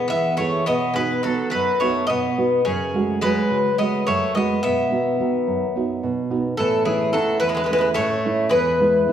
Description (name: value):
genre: greek folk, Greek bouzouki band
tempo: 214 BPM (eighths)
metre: 7/8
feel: straight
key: unclear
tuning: A4 = 440 Hz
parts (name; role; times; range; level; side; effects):
- Greek bouzouki; melody; 0.0-9.1 s; G#4 to E5; -22 LUFS; left 1 dB; none
- Greek bouzouki; second line; 0.0-9.1 s; C#3 to B3; -24 LUFS; left 4 dB; none
- nylon-string guitar; accompaniment; 0.0-9.1 s; E2 to G#4; -23 LUFS; right 4 dB; none
room: wet recital hall reverb, RT60 1.5 s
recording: recorded in a church or concert hall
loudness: -18 LUFS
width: side -9 dB against mid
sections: 0.0-6.6 A section; 6.6-9.1 B section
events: speeding up 0.0-9.1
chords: 0.0 E; 0.7 B; 2.7 F#madd9; 4.6 B; 6.6 A; 8.5 E